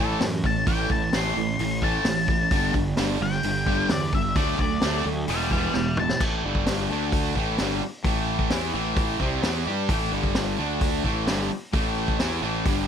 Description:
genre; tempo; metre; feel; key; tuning
classic rock; 130 BPM; 4/4; straight; unclear; A4 = 440 Hz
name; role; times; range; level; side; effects
octave-fuzz lead guitar; melody; 0.0-6.2 s; A4 to C6; -28 LUFS; left 4 dB; distortion, slapback echo
picked steel-string acoustic guitar; accompaniment; 0.0-6.2 s; E2 to A4; -34 LUFS; right 7 dB; none
distorted electric guitar; riff; 0.0-12.9 s; E2 to G4; -28 LUFS; right 13 dB; overdrive
overdriven semi-hollow guitar; riff; 0.0-12.9 s; G2 to G4; -30 LUFS; left 13 dB; none
fuzz fingered electric bass; bass; 0.0-12.9 s; E1 to G2; -30 LUFS; equal; overdrive
vintage drum kit; drums; 0.2-12.8 s; crash cymbal, hi-hat, kick drum, snare drum, toms; -27 LUFS; equal; none
room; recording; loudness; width
little or no reverb; none; -22 LUFS; side -8 dB against mid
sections
0.0-6.2 A section; 6.2-12.9 B section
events
lead electric guitar solo 0.0-6.2; drum fill 5.7-6.2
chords
0.0 A; 2.5 G; 4.4 D; 5.3 E; 6.2 A5; 6.4 G5; 6.9 D5; 7.4 A5; 10.1 G5; 10.6 D5; 11.0 A5

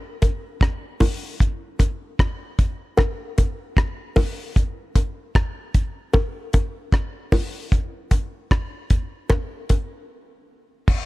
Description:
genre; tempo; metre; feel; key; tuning
reggae; 76 BPM; 4/4; swing 59% on 16ths; none; none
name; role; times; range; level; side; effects
deep reggae drum kit; drums; 0.2-11.1 s; crash cymbal, hi-hat, kick drum, rim click; -18 LUFS; equal; none
bongos; percussion; 0.2-9.9 s; none; -26 LUFS; left 1 dB; none
room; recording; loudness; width
little or no reverb; none; -20 LUFS; side -20 dB against mid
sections
0.0-10.9 A section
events
break 10.1-10.9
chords
none

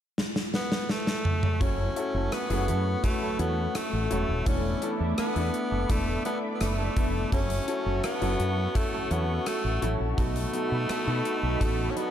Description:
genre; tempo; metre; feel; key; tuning
1980s-style pop; 84 BPM; 4/4; straight; F# minor; A4 = 439 Hz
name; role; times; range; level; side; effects
gated 80s drum kit; drums; 0.2-12.1 s; hi-hat, kick drum, rim click, snare drum, toms; -29 LUFS; equal; none
raspy tenor saxophone; melody; 0.5-12.1 s; A3 to C#4; -32 LUFS; equal; ping-pong delay
bright concert grand piano; accompaniment; 1.6-12.1 s; B2 to B4; -33 LUFS; left 4 dB; none
lush unison pad; sustained chords; 1.6-12.1 s; A3 to D6; -35 LUFS; equal; chorus
electric guitar at the edge of break-up; riff; 1.6-12.1 s; F#3 to A4; -37 LUFS; right 6 dB; lush chorus
mellow fretless electric bass; bass; 1.6-11.9 s; D#1 to B2; -29 LUFS; equal; none
room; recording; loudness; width
light reverb, small room ambience; dark, warm production; -25 LUFS; side -10 dB against mid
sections
0.0-1.6 A section; 1.6-12.1 B section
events
drum fill 0.2-1.6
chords
0.0 N.C.; 1.6 F#m7; 4.5 E7sus4; 7.3 F#m7; 10.2 B7

